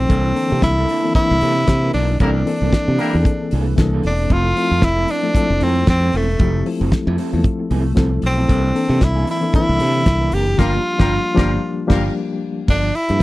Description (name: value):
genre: disco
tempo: 114 BPM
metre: 4/4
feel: swing 56% on 16ths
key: unclear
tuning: A4 = 441 Hz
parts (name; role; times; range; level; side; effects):
- bright tenor saxophone; melody; 0.0-13.2 s; A3 to G4; -20 LUFS; equal; none
- electric guitar at the edge of break-up; accompaniment; 0.0-13.2 s; E3 to C5; -28 LUFS; right 7 dB; none
- reed electric piano; accompaniment; 0.0-12.7 s; D3 to F5; -22 LUFS; left 3 dB; medium tremolo
- modern bright fingered electric bass; bass; 0.0-13.2 s; E1 to C3; -18 LUFS; equal; none
- damped 70s drum kit; drums; 0.1-13.2 s; crash cymbal, hi-hat, kick drum, snare drum; -17 LUFS; equal; none
- clear horn section; stabs; 2.2-3.2, 10.6-12.0 s; G3 to Bb4; -26 LUFS; left 2 dB; slapback echo
room: little or no reverb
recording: dry, close 1970s-style studio recording, lossy compression artefacts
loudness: -15 LUFS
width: side -18 dB against mid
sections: 0.0-12.7 A section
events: band accent 2.2-4.3, 10.6-12.7; reed electric piano fill 11.1-12.7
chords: 0.1 C13; 4.3 Fmaj7; 8.5 C13; 10.6 Gm7; 12.7 Gm9